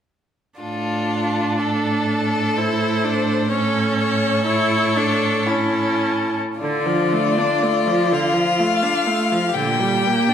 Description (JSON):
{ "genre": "classical, slow romantic movement for string quartet", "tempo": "50-64 BPM", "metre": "3/4", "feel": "rubato", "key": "D minor", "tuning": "A4 = 440 Hz", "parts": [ { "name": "rich violin", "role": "melody", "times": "0.6-10.3 s", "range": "A4 to G5", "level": "-22 LUFS", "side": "left 6 dB", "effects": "none" }, { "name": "clear violin", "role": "second line", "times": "0.6-10.3 s", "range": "E4 to A4", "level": "-24 LUFS", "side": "left 1 dB", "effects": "none" }, { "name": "clear viola", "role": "accompaniment", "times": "0.6-10.3 s", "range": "D3 to E4", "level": "-22 LUFS", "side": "right 2 dB", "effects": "none" }, { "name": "rich cello", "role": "bass", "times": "0.6-10.3 s", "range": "A2 to D3", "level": "-24 LUFS", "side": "right 3 dB", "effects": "none" } ], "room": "wet recital hall reverb, RT60 1.5 s", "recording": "recorded in a church or concert hall", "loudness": "-17 LUFS", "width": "side -8 dB against mid", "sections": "0.6-6.6 A section; 6.6-10.3 B section", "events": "none", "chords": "0.6 Dm/A; 3.5 A; 6.6 Dm; 9.6 Gm/Bb" }